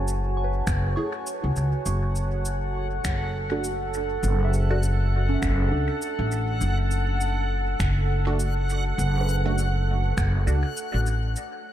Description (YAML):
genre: ambient dub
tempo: 101 BPM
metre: 4/4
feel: swing 58% on 16ths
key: unclear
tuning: A4 = 440 Hz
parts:
  - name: deep dark ambient pad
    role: sustained chords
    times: 0.0-11.7 s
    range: F#4 to A5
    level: -31 LUFS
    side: right 2 dB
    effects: chorus, built-in reverb
  - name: soft synth bell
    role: arpeggios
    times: 0.0-11.4 s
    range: C#4 to C#6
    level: -37 LUFS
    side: left 1 dB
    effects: chorus, phaser, dub echo
  - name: upright bass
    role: bass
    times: 0.0-11.3 s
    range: F#1 to C#2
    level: -24 LUFS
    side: equal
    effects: none
  - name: electronic cabasa and finger snaps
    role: drums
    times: 0.1-11.5 s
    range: none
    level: -37 LUFS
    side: equal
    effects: overdrive, dub echo
  - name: electronic kick drum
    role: drums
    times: 0.7-10.3 s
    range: none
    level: -29 LUFS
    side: equal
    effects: overdrive
  - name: filtered dub chord stab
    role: stabs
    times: 1.0-10.6 s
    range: A3 to G#4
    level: -34 LUFS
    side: right 2 dB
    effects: phaser, cassette tape, dub echo
  - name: backwards swelling texture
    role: texture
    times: 2.7-11.7 s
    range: C#5 to F#5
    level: -35 LUFS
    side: equal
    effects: built-in reverb
room: digital ambience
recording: none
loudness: -22 LUFS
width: side -12 dB against mid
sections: 0.0-11.4 A section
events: none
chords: 0.0 F#m7; 1.9 D/F#